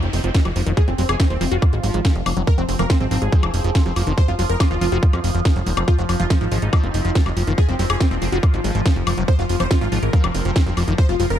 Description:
psychedelic trance; 141 BPM; 4/4; straight; F phrygian; A4 = 441 Hz
supersaw stab; melody; 0.0-11.4 s; F3 to C5; -26 LUFS; equal; phaser, sidechain pumping, digital delay
metallic wobble bass; second line; 0.0-10.9 s; F3 to C4; -38 LUFS; right 2 dB
overtone-sweeping drone; sustained chords; 0.2-11.4 s; F3; -29 LUFS; left 2 dB; chorus, built-in reverb, sidechain pumping
liquid acid bass; riff; 0.0-11.2 s; Eb3 to Gb4; -28 LUFS; moving between left 5 dB and right 4 dB; phaser, auto-pan, cassette tape, sidechain pumping, digital delay
plucky analog bass; bass; 0.0-11.4 s; Eb1 to F2; -21 LUFS; equal
drum and bass drum kit; drums; 0.0-11.4 s; hi-hat, snare drum, woodblock; -26 LUFS; left 1 dB; overdrive
downlifter; sound effects; 0.0-2.5 s; -38 LUFS; equal
electronic kick drum; drums; 0.3-11.1 s; -16 LUFS; equal; overdrive
little or no reverb; dark, warm production; -16 LUFS; side -10 dB against mid
0.0-11.4 A section
0.0 F5
0.35 | 0.77 1.20 1.62 2.05 | 2.47 2.90 3.32 3.75 | 4.17 4.60 5.03 5.45 | 5.88 6.30 6.73 7.15 | 7.58 8.01 8.43 8.86 | 9.28 9.71 10.13 10.56 | 10.98

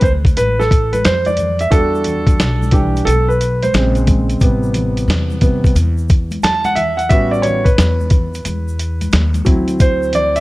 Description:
hip hop, jazz-hop; 89 BPM; 4/4; swing 66% on 16ths; A dorian; A4 = 439 Hz
warm grand piano; accompaniment; 0.0-10.4 s; C3 to A5; -16 LUFS; right 1 dB
upright bass; bass; 0.0-10.4 s; A1 to F2; -18 LUFS; equal
dusty soul sampler-style drum kit; drums; 0.0-10.4 s; hi-hat, kick drum, snare drum; -15 LUFS; equal; vintage 12-bit sampler grit
congas and tube shaker; percussion; 0.0-10.4 s; -28 LUFS; left 2 dB
little or no reverb; -12 LUFS; side -19 dB against mid
0.0-10.4 A section
grand piano solo 0.0-10.4
0.0 D7(no3); 1.7 Em7; 3.7 Bbm9; 4.4 Am9; 7.1 A13; 9.5 D9
0.36 1.04 | 1.71 2.39 3.06 3.74 | 4.41 5.08 5.76 6.43 | 7.11 7.78 8.46 9.13 | 9.80

